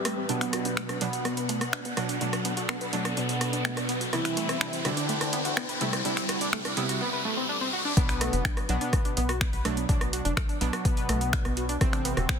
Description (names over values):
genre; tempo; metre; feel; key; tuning
melodic techno; 125 BPM; 4/4; straight; B phrygian; A4 = 440 Hz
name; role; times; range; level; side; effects
analog synth brass; melody; 0.0-12.4 s; B3 to G4; -35 LUFS; equal; chorus, sidechain pumping, tape echo
soft supersaw; second line; 0.0-12.4 s; B2 to G3; -36 LUFS; equal; sidechain pumping, ping-pong delay
dark chamber string section; sustained chords; 0.0-7.0 s; C4 to G5; -39 LUFS; left 1 dB; sidechain pumping
tight sequenced synth; arpeggios; 0.0-12.4 s; A3 to B4; -34 LUFS; right 1 dB; chorus, sidechain pumping, ping-pong delay
synth brass stab; stabs; 0.0-12.4 s; A2 to E4; -34 LUFS; right 2 dB; chorus, sidechain pumping, ping-pong delay
tight sequencer bass; bass; 0.0-12.3 s; E1 to C2; -32 LUFS; equal; sidechain pumping, high-pass filter
riser; sound effects; 0.0-8.0 s; none; -33 LUFS; left 1 dB; none
punchy analog drum machine; drums; 0.1-12.4 s; finger snaps, hi-hat, rim click; -31 LUFS; right 1 dB; overdrive, soft clipping on snare
electronic kick drum; drums; 8.0-12.4 s; none; -26 LUFS; equal; overdrive
room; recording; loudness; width
moderate huge ambient reverb, RT60 4.0 s; dense, heavily limited modern master; -25 LUFS; side -7 dB against mid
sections
0.0-8.0 A section; 8.0-12.4 B section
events
build-up 0.0-8.0; riser 0.0-8.0; filter sweep on synth arpeggio sound 0.0-8.0; filter sweep on analog polysynth 0.0-8.0; filter sweep on supersaw synth 0.0-8.0; drop 8.0-12.4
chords
0.3 Bm; 4.1 C; 8.0 Bm; 11.8 Am